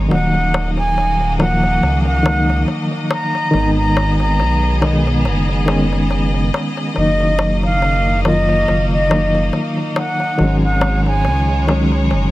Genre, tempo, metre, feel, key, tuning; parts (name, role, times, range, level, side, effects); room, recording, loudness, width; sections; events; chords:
trip hop; 70 BPM; 4/4; swing 55% on 16ths; Eb minor; A4 = 436 Hz
reed electric piano; accompaniment; 0.0-12.3 s; Eb3 to F4; -18 LUFS; equal; tremolo
clear studio violin section; sustained chords; 0.0-12.3 s; Ab3 to Eb5; -25 LUFS; left 2 dB
dark detuned saw bass; bass; 0.0-12.3 s; Eb1 to Db2; -18 LUFS; equal
reedy concert flute; melody; 0.1-11.6 s; Eb5 to Bb5; -20 LUFS; equal; tape echo
darbuka; percussion; 0.1-12.3 s; -25 LUFS; left 3 dB
small room ambience; -14 LUFS; side -17 dB against mid
0.0-12.3 A section
0.1 Ebm; 3.5 Abm; 7.0 Ebm/Gb; 10.4 Ab7sus4